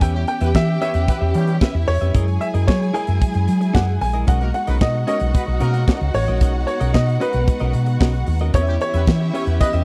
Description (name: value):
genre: disco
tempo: 113 BPM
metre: 4/4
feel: straight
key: B major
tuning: A4 = 440 Hz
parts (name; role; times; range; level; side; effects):
- clear baby grand piano; melody; 0.0-9.8 s; B4 to G#5; -27 LUFS; equal; none
- rich studio violin section; second line; 0.0-9.8 s; E4 to G#5; -33 LUFS; equal; none
- direct-recorded clean electric guitar; accompaniment; 0.0-9.8 s; C#4 to F#5; -31 LUFS; equal; none
- dark studio string section; sustained chords; 0.0-9.8 s; E3 to G4; -31 LUFS; equal; none
- hollow-body short-scale fingered electric bass; bass; 0.0-9.8 s; A1 to F#3; -21 LUFS; equal; none
- modern studio drum kit; drums; 0.0-9.8 s; hi-hat, kick drum, snare drum; -19 LUFS; equal; none
- mellow horn section; stabs; 0.1-9.7 s; G3 to C#5; -31 LUFS; equal; none
room: little or no reverb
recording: dry, close 1970s-style studio recording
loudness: -19 LUFS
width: mono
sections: 0.0-9.8 A section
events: none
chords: 0.0 Em6; 2.1 F#13; 4.3 Bmaj9; 8.5 Em6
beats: | 0.01 0.55 1.08 1.61 | 2.15 2.68 3.21 3.74 | 4.28 4.81 5.34 5.88 | 6.41 6.94 7.48 8.01 | 8.54 9.07 9.61